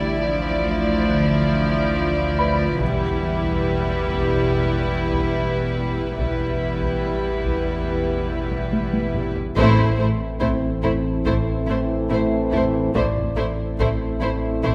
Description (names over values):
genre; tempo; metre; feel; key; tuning
cinematic, suspense film score; 71 BPM; 4/4; straight; A minor; A4 = 440 Hz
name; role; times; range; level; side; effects
warm studio violin section; melody; 0.0-14.7 s; B4 to D5; -30 LUFS; equal; none
rich studio violin section; second line; 0.0-14.7 s; E4; -31 LUFS; equal; none
rich studio viola section; accompaniment; 0.0-14.7 s; F3 to A3; -30 LUFS; equal; none
marimba with medium mallets; riff; 0.0-14.7 s; E2 to D4; -31 LUFS; equal; none
dark studio cello section; bass; 0.0-14.7 s; D2 to A2; -30 LUFS; equal; none
warm studio double bass section; bass; 0.0-14.7 s; E1 to D2; -31 LUFS; equal; none
sub bass with octave; drone; 0.0-14.7 s; A1; -31 LUFS; equal; none
felt-muted upright piano; texture; 2.4-14.7 s; C4 to B5; -33 LUFS; equal; none
taiko ensemble; drums; 2.8-14.7 s; none; -32 LUFS; equal; none
bright trombone section; sustained chords; 9.6-14.7 s; E3 to A3; -31 LUFS; equal; none
mellow French horn section; sustained chords; 9.6-14.7 s; C4 to E4; -29 LUFS; equal; none
timpani; percussion; 9.6-10.8 s; none; barely audible; none; none
room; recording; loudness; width
wet scoring stage reverb, RT60 1.7 s; none; -21 LUFS; mono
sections
0.0-9.6 A section; 9.6-14.7 B section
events
drum fill 8.7-9.6; band accent 9.6-10.4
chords
0.0 Dmadd9/A; 2.8 Em; 9.6 Am